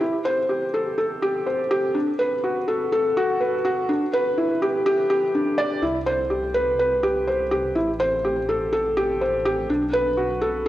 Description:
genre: piano and strings electronica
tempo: 124 BPM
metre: 4/4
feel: straight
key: unclear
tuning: A4 = 440 Hz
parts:
  - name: felt-muted upright piano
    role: riff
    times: 0.0-10.7 s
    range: D4 to D5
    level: -20 LUFS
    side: equal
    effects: cassette tape, analog delay
  - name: dark detuned saw bass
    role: bass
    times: 5.8-10.7 s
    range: A1 to C2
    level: -34 LUFS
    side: equal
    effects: tube saturation
room: moderate lush hall reverb, RT60 2.6 s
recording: home recording on cassette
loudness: -20 LUFS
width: side -14 dB against mid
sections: 0.0-5.8 A section; 5.8-10.7 B section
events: build-up 0.0-5.8; drop 5.8-10.7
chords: 0.0 Am7; 1.9 B7(no3); 3.9 Em7; 5.8 Cmaj7(no3); 7.8 Am7; 9.7 Bm7

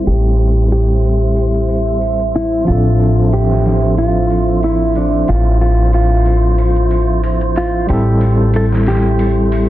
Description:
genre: trip hop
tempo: 92 BPM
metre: 4/4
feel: swing 55% on 16ths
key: A minor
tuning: A4 = 440 Hz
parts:
  - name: mellow electric guitar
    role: melody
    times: 0.0-9.7 s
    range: D4 to A4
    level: -18 LUFS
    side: equal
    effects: vintage 12-bit sampler grit, tape echo
  - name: barky tine electric piano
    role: accompaniment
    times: 0.0-9.7 s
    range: F3 to A4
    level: -19 LUFS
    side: right 1 dB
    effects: tremolo, tape echo
  - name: deep dark ambient pad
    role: sustained chords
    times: 0.0-9.7 s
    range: E5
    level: -24 LUFS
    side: right 2 dB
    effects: chorus, built-in reverb
  - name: upright bass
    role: bass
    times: 0.0-9.7 s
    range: A1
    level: -14 LUFS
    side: equal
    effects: none
  - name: wind-like tuned noise texture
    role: texture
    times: 0.0-9.7 s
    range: C5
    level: -28 LUFS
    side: right 2 dB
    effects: built-in reverb
  - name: trip hop sampler-style drum kit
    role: drums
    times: 0.1-9.7 s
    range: hi-hat, snare drum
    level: -31 LUFS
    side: right 1 dB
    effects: high-pass filter on hats, small room ambience, high-pass filter on snare
room: digital ambience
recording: dense, heavily limited modern master, low-pass filter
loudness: -11 LUFS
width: side -14 dB against mid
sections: 0.0-9.7 A section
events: filter sweep 0.0-9.7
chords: 0.0 Am7; 2.7 Fmaj13/A; 7.9 Am7

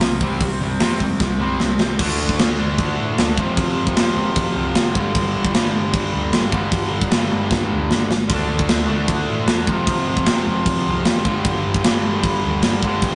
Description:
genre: punk rock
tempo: 152 BPM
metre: 4/4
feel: straight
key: unclear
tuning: A4 = 441 Hz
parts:
  - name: distorted electric guitar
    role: riff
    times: 0.0-13.2 s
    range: F2 to D4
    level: -29 LUFS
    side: equal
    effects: distortion
  - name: overdriven electric guitar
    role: riff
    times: 0.0-13.2 s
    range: F2 to D4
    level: -27 LUFS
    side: equal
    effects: none
  - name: raw garage guitar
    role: riff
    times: 0.0-13.2 s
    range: F2 to D4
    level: -30 LUFS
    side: equal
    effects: overdrive
  - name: overdriven picked electric bass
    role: bass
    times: 0.0-13.2 s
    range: F1 to A2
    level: -29 LUFS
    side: equal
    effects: none
  - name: tight metal drum kit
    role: drums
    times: 0.0-13.1 s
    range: crash cymbal, hi-hat, kick drum, snare drum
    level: -22 LUFS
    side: equal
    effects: none
room: light reverb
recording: rough rehearsal-room recording, tube saturation, nothing above 10.3 kHz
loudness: -19 LUFS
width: mono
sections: 0.0-2.0 A section; 2.0-13.2 B section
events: drum fill 1.2-2.0, 7.5-8.3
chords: 0.2 C5; 2.0 D5; 3.4 F5; 5.0 G5; 8.3 D5; 9.7 F5; 11.3 G5

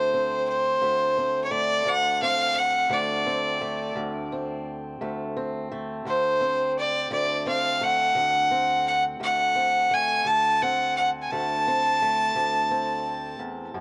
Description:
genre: acoustic country blues, solo or duo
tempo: 57 BPM (dotted quarters)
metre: 12/8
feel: straight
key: D mixolydian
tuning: A4 = 440 Hz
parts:
  - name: bright fiddle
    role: melody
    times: 0.0-13.4 s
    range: C5 to A5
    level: -25 LUFS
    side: equal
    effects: analog delay
  - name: fingerpicked swing-style acoustic guitar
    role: accompaniment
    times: 0.0-13.8 s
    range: D2 to C4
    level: -34 LUFS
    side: equal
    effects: cassette tape
room: light reverb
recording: home recording on cassette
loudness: -24 LUFS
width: mono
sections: 0.0-13.8 A section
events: none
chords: 0.0 D7

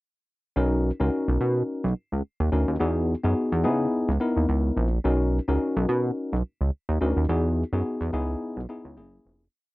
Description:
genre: early-eighties boogie funk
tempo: 107 BPM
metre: 4/4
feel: swing 56% on 16ths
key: B major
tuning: A4 = 440 Hz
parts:
  - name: tine electric piano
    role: accompaniment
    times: 0.6-9.4 s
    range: A#3 to A#4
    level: -26 LUFS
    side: left 2 dB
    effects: none
  - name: chorused synth bass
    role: bass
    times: 0.6-9.5 s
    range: E#1 to C#3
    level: -24 LUFS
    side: right 1 dB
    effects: none
room: little or no reverb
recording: dry, close 1970s-style studio recording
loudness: -23 LUFS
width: side -19 dB against mid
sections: 0.6-9.5 verse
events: fade-out 7.3-9.5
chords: 0.6 Bmaj7; 2.8 Emaj9; 3.6 C#m9; 5.0 Bmaj7; 7.3 Emaj9; 8.1 C#m9; 9.0 F#9

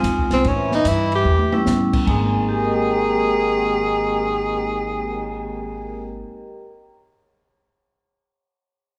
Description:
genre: jazz, small-group swing and bop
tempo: 147 BPM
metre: 4/4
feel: swing 67% on 8ths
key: Ab major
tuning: A4 = 438 Hz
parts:
  - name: bright trombone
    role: second line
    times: 0.0-6.1 s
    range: Eb3 to F3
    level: -32 LUFS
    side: equal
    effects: none
  - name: vibraphone with medium hard mallets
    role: accompaniment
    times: 0.0-7.0 s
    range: G3 to Bb5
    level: -26 LUFS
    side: equal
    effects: none
  - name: upright bass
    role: bass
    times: 0.0-6.2 s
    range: Ab1 to A2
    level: -28 LUFS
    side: equal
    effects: none
  - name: open jazz drum kit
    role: drums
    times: 0.0-5.2 s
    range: crash cymbal, cymbal swell, hi-hat, kick drum, ride cymbal, snare drum, toms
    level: -28 LUFS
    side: equal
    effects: none
  - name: warm tenor saxophone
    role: melody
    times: 0.3-6.1 s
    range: C4 to Ab4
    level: -24 LUFS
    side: equal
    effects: none
room: moderate recital hall reverb, RT60 1.3 s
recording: recorded in a church or concert hall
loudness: -20 LUFS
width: mono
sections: 0.0-2.1 A section; 2.1-5.3 B section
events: drum fill 1.3-1.7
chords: 0.4 A7; 2.1 Abmaj7

